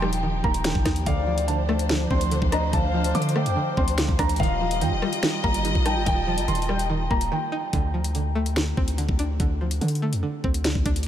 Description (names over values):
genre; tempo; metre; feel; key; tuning
hip hop, drill; 144 BPM; 4/4; half-time; D phrygian; A4 = 441 Hz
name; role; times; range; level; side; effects
dark concert grand piano; melody; 0.0-7.7 s; F5 to D6; -30 LUFS; right 1 dB; wide subtle chorus, tape echo
gliding portamento lead; second line; 0.0-6.9 s; D5 to A5; -33 LUFS; left 3 dB; chorus, tape echo
string-like resonator pluck; accompaniment; 0.0-11.1 s; D3 to Eb4; -30 LUFS; right 2 dB; chorus
dark symphonic string section; sustained chords; 0.0-7.7 s; F3 to Eb5; -30 LUFS; equal; none
long sustained 808-style bass; bass; 0.0-11.1 s; Eb1 to D3; -26 LUFS; equal; none
drill drum kit; drums; 0.0-11.1 s; finger snaps, hi-hat, kick drum, rim click, snare drum; -26 LUFS; equal; none
room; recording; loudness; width
moderate huge ambient reverb, RT60 8.0 s; dreamy mix soaked in reverb; -21 LUFS; side -10 dB against mid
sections
0.0-7.7 A section; 7.7-11.1 B section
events
break 7.3-7.7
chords
0.0 Ebadd9; 1.1 Dm7; 4.4 Ebadd9; 7.7 Dm7